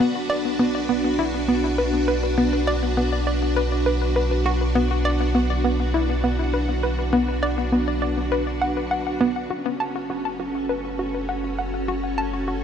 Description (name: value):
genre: ambient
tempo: 101 BPM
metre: 4/4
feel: straight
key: B minor, F# minor from 9.5 s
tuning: A4 = 440 Hz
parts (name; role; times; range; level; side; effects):
- string machine, full ensemble; sustained chords; 0.0-12.6 s; C#4 to B4; -25 LUFS; equal; ensemble chorus, shimmer reverb
- hollow square pluck; riff; 0.0-12.6 s; B3 to A5; -24 LUFS; left 1 dB; chorus, ping-pong delay, shimmer reverb
- warm sub bass; bass; 0.0-12.6 s; F#1 to B1; -26 LUFS; equal; none
room: moderate huge ambient reverb, RT60 7.3 s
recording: none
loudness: -20 LUFS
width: side -8 dB against mid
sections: 0.0-9.5 A section; 9.5-12.6 B section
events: none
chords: 0.0 Bm; 9.5 F#m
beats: | 0.00 0.59 1.19 1.78 | 2.38 2.97 3.56 4.16 | 4.75 5.35 5.94 6.54 | 7.13 7.72 8.32 8.91 | 9.51 10.10 10.69 11.29 | 11.88 12.48